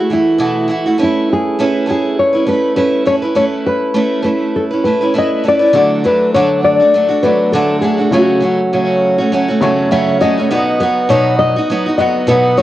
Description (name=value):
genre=acoustic pop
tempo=101 BPM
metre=4/4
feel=swing 55% on 16ths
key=unclear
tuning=A4 = 439 Hz
part: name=nylon-string guitar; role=melody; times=0.0-12.6 s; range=E4 to E5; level=-14 LUFS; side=left 2 dB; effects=cassette tape, plate reverb, tape echo
part: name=picked steel-string acoustic guitar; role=accompaniment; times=0.0-12.6 s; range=B2 to B4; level=-14 LUFS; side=right 2 dB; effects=cassette tape, plate reverb
part: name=dark upright piano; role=accompaniment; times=5.7-12.6 s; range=C#3 to F#5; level=-20 LUFS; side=left 2 dB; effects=cassette tape, plate reverb
room=moderate studio reverb, RT60 0.6 s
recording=home recording on cassette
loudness=-11 LUFS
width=side -14 dB against mid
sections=0.0-5.7 A section; 5.7-12.6 B section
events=none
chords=0.0 B7sus4; 1.0 Aadd9; 5.7 D; 8.1 F#m/C#; 10.5 B